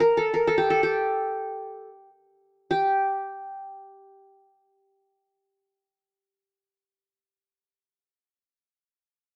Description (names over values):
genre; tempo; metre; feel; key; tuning
Arabic maqam ensemble; free time; none; none; G minor; A4 = 439 Hz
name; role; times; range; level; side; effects
qanun; solo; 0.0-7.1 s; G4 to Bb4; -25 LUFS; equal; none
room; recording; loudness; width
moderate studio reverb, RT60 0.6 s; none; -25 LUFS; mono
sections
0.0-2.7 A section; 2.7-6.6 B section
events
none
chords
none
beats
free time